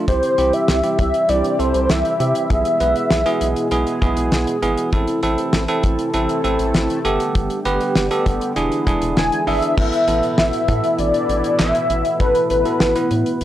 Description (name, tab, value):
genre	synth-pop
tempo	99 BPM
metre	4/4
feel	straight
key	unclear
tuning	A4 = 441 Hz
part	bell-like tine electric piano	accompaniment	0.0-13.4 s	B3 to B4	-21 LUFS	right 2 dB	none
part	sweeping resonant pad	sustained chords	0.0-13.4 s	A2 to A4	-25 LUFS	left 1 dB	chorus
part	wide unison lead	melody	0.1-4.0, 9.2-13.4 s	B4 to G#5	-18 LUFS	left 1 dB	tape echo
part	rubbery square bass	bass	0.1-13.4 s	E1 to C3	-23 LUFS	equal	none
part	damped 70s drum kit	drums	0.1-13.4 s	crash cymbal, handclaps, hi-hat, kick drum, snare drum	-21 LUFS	equal	none
room	little or no reverb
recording	dry, gritty hardware recording, cassette tape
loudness	-16 LUFS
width	side -12 dB against mid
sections	0.0-9.8 A section; 9.8-13.4 B section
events	none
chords	0.1 C; 2.5 E/B; 4.9 Am; 7.0 Gadd9; 8.6 E7; 9.8 Asus2